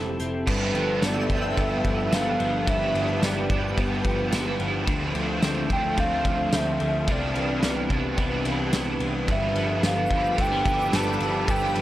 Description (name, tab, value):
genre	dream pop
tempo	109 BPM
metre	4/4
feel	straight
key	G mixolydian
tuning	A4 = 439 Hz
part	warm analog pad	sustained chords	0.0-11.8 s	C3 to C5	-29 LUFS	right 1 dB	chorus
part	electric guitar at the edge of break-up	arpeggios	0.0-11.8 s	G2 to A4	-31 LUFS	left 4 dB	analog chorus, analog delay
part	vintage muted picked electric bass	bass	0.0-11.8 s	F1 to D2	-32 LUFS	equal	none
part	loose indie drum kit	drums	0.2-11.8 s	crash cymbal, hi-hat, kick drum, ride cymbal, snare drum, tambourine	-28 LUFS	equal	none
part	warbly nostalgic lead	melody	0.5-11.8 s	B4 to A5	-28 LUFS	equal	chorus, analog delay
part	overdriven semi-hollow guitar	accompaniment	0.5-11.8 s	G2 to E4	-31 LUFS	right 4 dB	tremolo, ensemble chorus
part	twinkling granular texture	texture	1.0-11.8 s	F4 to E6	-38 LUFS	left 1 dB	built-in reverb, analog delay
room	small room ambience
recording	none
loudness	-22 LUFS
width	side -14 dB against mid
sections	0.5-11.8 A section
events	none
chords	0.5 G13; 4.9 Dm9; 7.1 Cmaj9; 9.3 G13